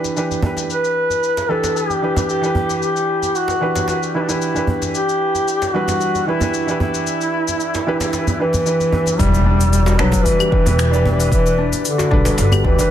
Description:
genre	organic downtempo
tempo	113 BPM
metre	4/4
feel	swing 53% on 16ths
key	E minor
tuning	A4 = 439 Hz
part	felt-muted upright piano	accompaniment	0.0-12.9 s	E3 to B4	-22 LUFS	right 2 dB	sidechain pumping, ping-pong delay
part	afro-pop drum kit	drums	0.0-12.9 s	cabasa, claves, finger snaps, hi-hat	-27 LUFS	left 5 dB	low-pass filter on perc, low-pass filter on hats, soft clipping on snare, low-pass filter on snare, low-pass filter on room
part	djembe	percussion	0.0-12.9 s	none	-25 LUFS	right 1 dB	none
part	warm duduk	melody	0.7-12.9 s	D3 to B4	-19 LUFS	equal	digital delay
part	Celtic harp	arpeggios	9.2-12.9 s	D4 to D5	-23 LUFS	left 6 dB	ping-pong delay
part	upright bass	bass	9.2-12.8 s	E1 to D2	-17 LUFS	equal	sidechain pumping
part	electronic kick drum	drums	9.2-12.9 s	none	-18 LUFS	equal	none
part	impact	sound effects	9.2-11.3 s	none	-25 LUFS	left 1 dB	none
room	light reverb, small room ambience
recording	dense, heavily limited modern master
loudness	-15 LUFS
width	side -10 dB against mid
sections	0.0-9.2 A section; 9.2-12.9 B section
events	impact 9.2-11.3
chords	0.0 Em

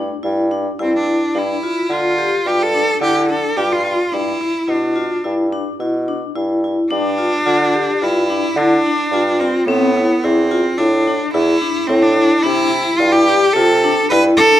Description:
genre	contemporary instrumental, chamber music in an uneven meter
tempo	108 BPM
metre	5/4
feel	straight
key	G mixolydian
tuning	A4 = 443 Hz
part	vibraphone with medium hard mallets	arpeggios	0.0-14.6 s	C4 to G4	-18 LUFS	left 1 dB	none
part	warm bassoon	bass	0.0-14.3 s	E2 to D3	-20 LUFS	right 1 dB	none
part	clear cello	melody	0.8-14.6 s	B3 to B4	-17 LUFS	right 1 dB	none
room	moderate recital hall reverb, RT60 1.5 s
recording	minimal, uncompressed stereo recording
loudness	-14 LUFS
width	side -12 dB against mid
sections	0.0-6.9 A section; 6.9-14.6 B section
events	none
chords	0.0 C/G (rootless); 1.4 G5; 4.1 Em7/G; 6.9 G5; 9.7 Am; 12.5 Cadd9

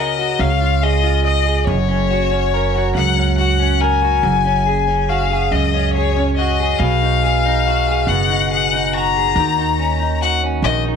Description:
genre	six-eight pop ballad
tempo	47 BPM (dotted quarters)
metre	6/8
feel	straight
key	F# major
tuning	A4 = 440 Hz
part	warm violin	melody	0.0-10.8 s	C#5 to A#5	-18 LUFS	left 10 dB	none
part	direct-recorded clean electric guitar	accompaniment	0.0-11.0 s	F#2 to D#5	-20 LUFS	right 2 dB	double-tracked left and right
part	upright bass	bass	0.0-11.0 s	F#1 to D#2	-19 LUFS	right 2 dB	none
room	light reverb, studio reverb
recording	none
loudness	-14 LUFS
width	side -6 dB against mid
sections	0.0-11.0 A section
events	none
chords	0.4 C#add9; 1.7 F#; 4.2 F#sus2; 6.8 B6; 9.4 D#m7

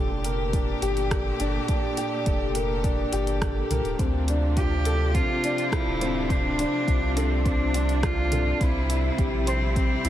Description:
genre	piano and strings electronica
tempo	104 BPM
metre	4/4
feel	straight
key	D minor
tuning	A4 = 440 Hz
part	rich string quartet	sustained chords	0.0-10.1 s	Bb2 to G4	-32 LUFS	equal	none
part	dark grand piano	riff	0.0-10.1 s	C4 to C5	-28 LUFS	left 1 dB	analog chorus, diffuse ambient delay
part	round analog bass	bass	0.0-10.1 s	D1 to D2	-27 LUFS	equal	sidechain pumping
part	deep house drum kit	drums	0.2-10.1 s	hi-hat, rim click, toms	-36 LUFS	equal	none
part	electronic kick drum	drums	0.5-9.9 s	none	-26 LUFS	equal	none
part	rich cello	melody	4.6-10.1 s	C4 to G4	-29 LUFS	right 1 dB	none
room	moderate huge ambient reverb, RT60 8.2 s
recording	dreamy mix soaked in reverb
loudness	-22 LUFS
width	side -12 dB against mid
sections	0.0-10.1 A section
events	none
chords	0.0 Gmadd9; 4.0 Dm7; 8.6 C

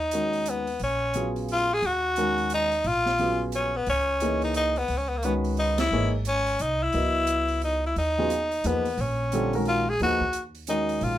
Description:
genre	modal jazz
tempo	176 BPM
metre	3/4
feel	swing 63% on 8ths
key	Eb phrygian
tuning	A4 = 440 Hz
part	growling tenor saxophone	melody	0.0-11.2 s	Bb3 to Ab4	-25 LUFS	left 1 dB	none
part	upright bass	bass	0.0-11.2 s	Ab1 to Fb2	-31 LUFS	right 1 dB	none
part	warm concert grand piano	accompaniment	0.1-11.2 s	Db3 to Eb5	-29 LUFS	equal	none
part	open jazz drum kit	drums	0.1-11.1 s	hi-hat, kick drum, ride cymbal, snare drum	-38 LUFS	right 3 dB	none
room	moderate small room reverb, RT60 0.5 s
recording	minimal, uncompressed stereo recording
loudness	-23 LUFS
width	side -12 dB against mid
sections	0.0-11.2 A section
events	band accent 5.7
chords	0.0 Ebm9; 3.9 Dbm9; 8.0 Ebm9

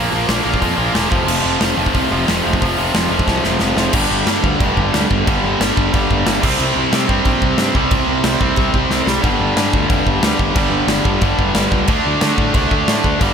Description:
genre	punk rock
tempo	181 BPM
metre	4/4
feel	straight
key	G minor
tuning	A4 = 439 Hz
part	biting overdriven guitar	riff	0.0-13.3 s	F2 to D4	-20 LUFS	left 12 dB	none
part	distorted electric guitar	riff	0.0-13.3 s	F2 to D4	-22 LUFS	right 1 dB	overdrive
part	tight distorted guitar	riff	0.0-13.3 s	F2 to D4	-20 LUFS	right 14 dB	distortion
part	fuzz picked electric bass	bass	0.0-13.3 s	E1 to D3	-22 LUFS	equal	overdrive
part	big rock drum kit	drums	0.3-13.3 s	crash cymbal, hi-hat, kick drum, snare drum	-19 LUFS	equal	none
room	little or no reverb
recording	none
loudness	-13 LUFS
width	side -7 dB against mid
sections	0.0-3.9 A section; 3.9-13.3 B section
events	drum fill 3.3-3.9, 8.9-9.2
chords	0.0 Bb5; 1.1 F5; 3.9 G5; 6.4 C5; 9.2 G5; 11.9 D5

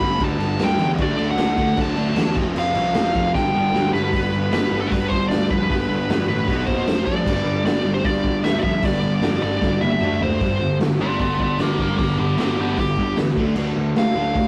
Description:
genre	punk rock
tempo	153 BPM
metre	4/4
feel	straight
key	G major, G mixolydian from 4.1 s, G major from 10.4 s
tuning	A4 = 440 Hz
part	nasal lead guitar with a parked wah	melody	0.0-14.5 s	B3 to B5	-26 LUFS	equal	overdrive
part	distorted electric guitar	riff	0.0-14.5 s	F2 to C5	-32 LUFS	equal	distortion
part	sludgy distorted guitar	riff	0.0-14.5 s	F2 to D4	-30 LUFS	equal	overdrive
part	sludgy distorted guitar	riff	0.0-14.5 s	F2 to D4	-27 LUFS	equal	overdrive
part	fuzz picked electric bass	bass	0.0-14.5 s	F1 to G2	-29 LUFS	equal	overdrive
part	raw garage drum kit	drums	0.0-14.4 s	crash cymbal, hi-hat, kick drum, snare drum, toms	-26 LUFS	equal	none
room	moderate stone room reverb, RT60 1.2 s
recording	rough rehearsal-room recording, warm saturation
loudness	-20 LUFS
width	mono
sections	0.0-4.1 A section; 4.1-10.4 B section; 10.4-14.5 C section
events	drum fill 3.3-4.1, 9.6-10.4; lead electric guitar solo 10.4-14.5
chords	0.0 G; 1.0 D; 2.4 F; 3.3 G; 6.5 B5; 6.9 F5; 7.3 G; 10.0 D5; 10.4 G; 13.4 D

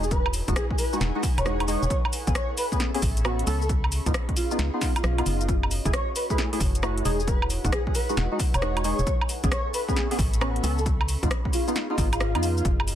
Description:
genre	UK garage, two-step garage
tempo	134 BPM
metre	4/4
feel	swing 65% on 16ths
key	unclear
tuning	A4 = 436 Hz
part	breathy flute-like synth lead	melody	0.0-12.7 s	E#4 to C#5	-32 LUFS	equal	ensemble chorus, dub echo
part	percussive organ stab	stabs	0.0-12.6 s	G#3 to A4	-30 LUFS	equal	ensemble chorus, dub echo
part	organ-like FM bass	bass	0.0-13.0 s	E1 to E#2	-26 LUFS	equal	sidechain pumping
part	garage drum kit	drums	0.0-13.0 s	cabasa, hi-hat, rim click, snare drum, woodblock	-30 LUFS	equal	soft clipping on snare
part	airy breathy pad	texture	0.0-13.0 s	C#4 to C#6	-38 LUFS	left 1 dB	chorus, sidechain pumping
part	electronic kick drum	drums	0.1-12.8 s	none	-26 LUFS	equal	none
room	light reverb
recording	dense, heavily limited modern master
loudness	-22 LUFS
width	side -11 dB against mid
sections	0.0-13.0 A section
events	none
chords	0.0 Emaj9; 1.9 Amaj9; 3.7 C#9; 5.5 F#m9; 7.1 Emaj9; 9.1 Amaj9; 10.9 C#9

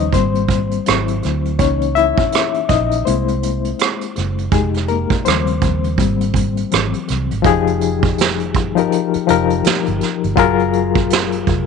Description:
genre	R&B, neo-soul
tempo	82 BPM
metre	4/4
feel	swing 60% on 16ths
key	unclear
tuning	A4 = 440 Hz
part	reed electric piano	accompaniment	0.0-11.7 s	Db3 to Fb5	-17 LUFS	left 10 dB	fast tremolo
part	vintage muted fingered electric bass	bass	0.0-11.7 s	F1 to Eb2	-21 LUFS	right 2 dB	none
part	vintage brush drum kit	drums	0.1-11.7 s	hi-hat, kick drum, rim click, snare drum	-19 LUFS	right 7 dB	none
room	light reverb, small room ambience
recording	1960s-style stereo with parts hard left and right, nothing above 10.5 kHz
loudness	-14 LUFS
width	side -6 dB against mid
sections	0.0-7.4 A section; 7.4-11.7 B section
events	reed electric piano solo 0.0-7.4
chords	0.1 Abmaj9; 0.9 Abaug7; 1.6 Dbm6; 3.1 C7b13; 4.5 Fm9; 5.3 Eb13; 6.0 Abmaj9; 6.7 Abaug7; 7.4 Fm9; 10.4 Gbmaj9

